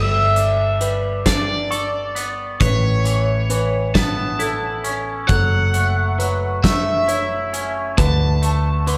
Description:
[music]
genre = post-rock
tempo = 45 BPM (dotted quarters)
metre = 6/8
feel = straight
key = G lydian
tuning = A4 = 440 Hz
[part]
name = raw garage guitar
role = melody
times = 0.0-9.0 s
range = C#5 to A5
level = -24 LUFS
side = equal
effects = overdrive, phaser, slapback echo
[part]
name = felt-muted upright piano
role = arpeggios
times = 0.0-9.0 s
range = A4 to C#6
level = -30 LUFS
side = equal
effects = slapback echo
[part]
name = twangy electric guitar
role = arpeggios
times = 0.0-9.0 s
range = A2 to A4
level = -29 LUFS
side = equal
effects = lush chorus, slapback echo
[part]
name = hollow-body short-scale picked electric bass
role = bass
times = 0.0-9.0 s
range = F#1 to D2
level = -23 LUFS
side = equal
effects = none
[part]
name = huge arena drum kit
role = drums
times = 0.4-9.0 s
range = hi-hat, kick drum, snare drum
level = -24 LUFS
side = equal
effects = none
[sound]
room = light reverb, small room reverb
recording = none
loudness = -19 LUFS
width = mono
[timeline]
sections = 0.0-9.0 A section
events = none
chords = 0.0 Gadd9; 2.6 Aadd9; 5.3 F#m7; 8.0 D5

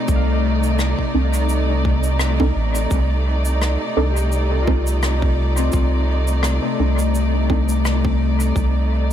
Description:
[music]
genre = ambient dub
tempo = 85 BPM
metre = 4/4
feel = swing 56% on 16ths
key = C dorian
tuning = A4 = 440 Hz
[part]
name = dark studio string section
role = sustained chords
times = 0.0-9.1 s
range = C3 to D5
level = -24 LUFS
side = right 1 dB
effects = none
[part]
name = Celtic harp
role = arpeggios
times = 0.0-9.1 s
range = A3 to F5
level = -26 LUFS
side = left 8 dB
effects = tape echo
[part]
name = soft dub sub bass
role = bass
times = 0.1-9.1 s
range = A1 to C2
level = -18 LUFS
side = equal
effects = tube saturation
[part]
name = cabasa and rim click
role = drums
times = 0.1-8.7 s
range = none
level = -30 LUFS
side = left 1 dB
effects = dub echo
[part]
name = electronic kick drum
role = drums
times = 0.1-8.7 s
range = none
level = -22 LUFS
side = equal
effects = none
[part]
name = filtered dub chord stab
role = stabs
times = 1.1-7.7 s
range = C4 to A4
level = -26 LUFS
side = right 2 dB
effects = phaser, analog chorus, dub echo
[sound]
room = light reverb, small room reverb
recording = none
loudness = -16 LUFS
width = side -10 dB against mid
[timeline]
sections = 0.0-9.1 A section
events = filter sweep on synth stab 0.0-9.1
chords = 0.0 Cm69

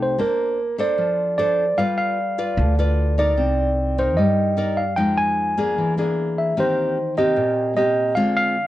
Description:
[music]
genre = bossa nova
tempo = 151 BPM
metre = 4/4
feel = straight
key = G minor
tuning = A4 = 440 Hz
[part]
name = tine electric piano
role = melody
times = 0.0-8.7 s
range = Bb4 to Ab5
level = -21 LUFS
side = right 2 dB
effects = none
[part]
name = nylon-string guitar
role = accompaniment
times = 0.0-8.7 s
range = Bb2 to D5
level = -22 LUFS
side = left 2 dB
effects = none
[part]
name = upright bass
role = bass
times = 0.0-8.7 s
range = G1 to G2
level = -23 LUFS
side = equal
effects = none
[sound]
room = light reverb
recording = worn, warbling old tape, cassette tape, warbly pitch drift, nothing above 10.6 kHz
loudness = -18 LUFS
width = side -14 dB against mid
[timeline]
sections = 0.0-8.7 A section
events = none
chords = 0.2 Bbmaj9; 1.8 G7; 3.4 Cm9; 5.0 Fm7; 5.8 E7#11; 6.6 Eb6; 8.2 Dm7b5

